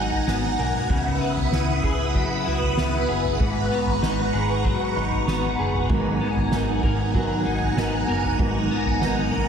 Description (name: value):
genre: dream pop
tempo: 96 BPM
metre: 4/4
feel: straight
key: G# minor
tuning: A4 = 440 Hz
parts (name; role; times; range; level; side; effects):
- phased string machine; sustained chords; 0.0-9.5 s; B4 to D#6; -26 LUFS; right 1 dB; ensemble chorus, phaser, shimmer reverb
- electric guitar at the edge of break-up; arpeggios; 0.0-9.5 s; G#2 to A#4; -26 LUFS; left 3 dB; ensemble chorus, diffuse ambient delay, shimmer reverb
- hollow-body short-scale fingered electric bass; bass; 0.0-9.5 s; F#1 to C#2; -28 LUFS; right 1 dB; none
- soft-mallet drum kit; drums; 0.1-9.5 s; crash cymbal, kick drum, snare drum, toms; -27 LUFS; equal; none
- mellow electric guitar; accompaniment; 5.9-9.5 s; G#2 to A#4; -27 LUFS; right 3 dB; harmonic tremolo, ensemble chorus, shimmer reverb
room: wet plate reverb, RT60 2.1 s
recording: dreamy mix soaked in reverb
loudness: -20 LUFS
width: side -7 dB against mid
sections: 0.0-5.9 A section; 5.9-9.5 A section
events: none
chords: 0.0 G#m9; 0.9 C#m11; 3.4 G#m11; 5.9 G#m9